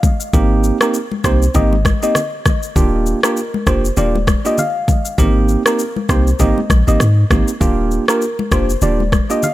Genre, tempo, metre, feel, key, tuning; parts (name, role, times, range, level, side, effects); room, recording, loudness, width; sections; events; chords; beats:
afrobeats; 99 BPM; 4/4; swing 58% on 16ths; Eb major; A4 = 440 Hz
soft round pluck; melody; 0.0-9.5 s; Bb4 to F5; -22 LUFS; left 2 dB; chorus, ping-pong delay
afro-pop drum kit; drums; 0.0-9.5 s; kick drum, rim click, shaker; -17 LUFS; equal
congas; percussion; 0.0-9.5 s; -24 LUFS; left 3 dB
bell-like tine electric piano; accompaniment; 0.3-9.5 s; Bb3 to G4; -19 LUFS; right 4 dB
warm 808-style bass; bass; 0.3-9.2 s; Eb1 to Ab2; -15 LUFS; equal
digital ambience; -13 LUFS; side -15 dB against mid
0.0-9.5 A section
0.3 Abmaj7; 2.8 Ebmaj7; 5.2 Abmaj7; 7.6 Ebmaj7
| 0.34 0.94 1.55 2.15 | 2.76 3.37 3.97 4.58 | 5.18 5.79 6.40 7.00 | 7.61 8.21 8.82 9.43